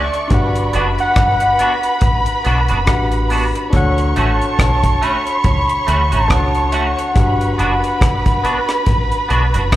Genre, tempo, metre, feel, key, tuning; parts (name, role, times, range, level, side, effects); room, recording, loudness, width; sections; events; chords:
lovers rock reggae; 70 BPM; 4/4; swing 58% on 16ths; A4 = 438 Hz
warm velvety synth lead; melody; 0.0-9.3 s; D5 to B5; -20 LUFS; equal; chorus, tape echo, slapback echo
warm symphonic violin section; second line; 0.0-9.8 s; B4 to C#6; -21 LUFS; equal; dub echo, slapback echo
tine electric piano; accompaniment; 0.0-9.8 s; D4 to F#5; -24 LUFS; left 3 dB; slapback echo
clean electric guitar; stabs; 0.0-9.6 s; A3 to F#4; -23 LUFS; right 2 dB; analog chorus, slapback echo
deep dub fingered electric bass; bass; 0.0-9.8 s; F#1 to D2; -18 LUFS; equal
deep reggae drum kit; drums; 0.1-9.8 s; hi-hat, kick drum, rim click; -17 LUFS; equal
light reverb; live gig heard through the venue's PA, club reverb; -13 LUFS; side -14 dB against mid
0.0-9.8 A section
0.3 Gmaj7; 3.7 Dmaj7; 7.2 Gmaj7